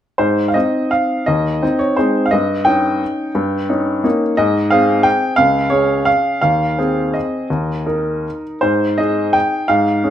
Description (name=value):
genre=classical, piano waltz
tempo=154-192 BPM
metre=3/4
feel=rubato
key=Ab major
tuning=A4 = 439 Hz
part: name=clear upright piano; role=solo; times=0.2-10.1 s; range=Db2 to G5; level=-14 LUFS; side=equal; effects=none
room=moderate large studio reverb, RT60 1.1 s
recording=none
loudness=-14 LUFS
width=side -10 dB against mid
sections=0.2-10.1 A section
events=none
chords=0.2 Ab; 2.3 Eb7/G; 4.4 Ab; 5.4 Db; 6.4 Ab/Eb; 7.5 Eb5; 8.6 Ab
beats=| 0.19 0.55 0.92 | 1.27 1.62 1.98 | 2.32 2.66 3.01 | 3.35 3.69 4.04 | 4.39 4.72 5.05 | 5.38 5.71 6.07 | 6.43 6.79 7.15 | 7.51 7.87 8.24 | 8.63 8.98 9.34 | 9.69 10.02